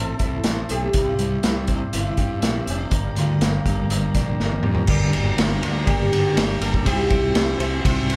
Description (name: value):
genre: psychedelic rock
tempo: 122 BPM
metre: 4/4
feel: straight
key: unclear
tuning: A4 = 443 Hz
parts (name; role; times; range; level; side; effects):
- sitar; melody; 0.0-8.2 s; D4 to A4; -30 LUFS; equal; none
- combo organ; sustained chords; 0.0-8.2 s; G4 to C6; -37 LUFS; equal; none
- twelve-string electric guitar; riff; 0.0-8.2 s; G2 to C5; -28 LUFS; equal; tremolo
- fuzz fingered electric bass; bass; 0.0-8.2 s; F1 to G2; -28 LUFS; equal; overdrive
- vintage drum kit; drums; 0.2-8.2 s; crash cymbal, hi-hat, kick drum, ride cymbal, snare drum, toms; -24 LUFS; equal; none
room: light reverb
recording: band playing live in one room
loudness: -21 LUFS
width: mono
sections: 0.0-4.9 A section; 4.9-8.2 B section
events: drum fill 4.4-4.9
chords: 0.0 Am; 0.9 Cadd9; 2.9 Gm; 6.9 C